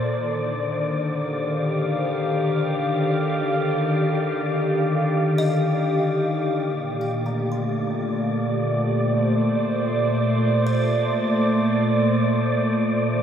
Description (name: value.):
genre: ambient.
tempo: 74 BPM.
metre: 4/4.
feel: straight.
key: Bb major.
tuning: A4 = 440 Hz.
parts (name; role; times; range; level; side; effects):
warbly tape-like pad; sustained chords; 0.0-13.2 s; Bb2 to F5; -20 LUFS; equal; chorus, built-in reverb.
hand-pumped harmonium; drone; 0.0-6.7 s; Bb3; -45 LUFS; right 1 dB; none.
wind-like tuned noise texture; texture; 0.0-13.2 s; D5 to D6; -31 LUFS; equal; built-in reverb.
buzzing kalimba; arpeggios; 5.4-11.8 s; C5 to C6; -35 LUFS; right 1 dB; analog delay.
room: wet huge ambient reverb, RT60 7.8 s.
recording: dreamy mix soaked in reverb.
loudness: -20 LUFS.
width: side -8 dB against mid.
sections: 0.0-6.6 A section; 6.6-13.2 B section.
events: fade-in on kalimba 6.6-13.2.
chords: 0.1 Ebmaj9; 6.6 Bbmaj9.